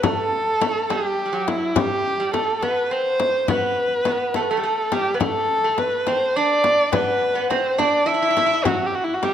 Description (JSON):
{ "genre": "Persian modal ensemble", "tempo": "70 BPM (dotted quarters)", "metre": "6/8", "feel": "straight", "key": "G dastgah mahur", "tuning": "A4 = 440 Hz", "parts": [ { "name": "dark kamancheh", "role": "melody", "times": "0.0-9.3 s", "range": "E4 to E5", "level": "-20 LUFS", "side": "equal", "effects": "none" }, { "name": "metal-body resonator slide guitar", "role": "second line", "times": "0.0-9.3 s", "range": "F#3 to E4", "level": "-25 LUFS", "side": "right 4 dB", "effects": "none" }, { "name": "frame drum", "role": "percussion", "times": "0.0-9.3 s", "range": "none", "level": "-26 LUFS", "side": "left 5 dB", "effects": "none" } ], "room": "moderate scoring stage reverb, RT60 1.6 s", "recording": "none", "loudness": "-18 LUFS", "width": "side -9 dB against mid", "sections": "0.0-9.3 A section", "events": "none", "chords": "none", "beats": "| 0.04 0.90 | 1.76 2.62 | 3.48 4.35 | 5.21 6.07 | 6.93 7.79 | 8.65" }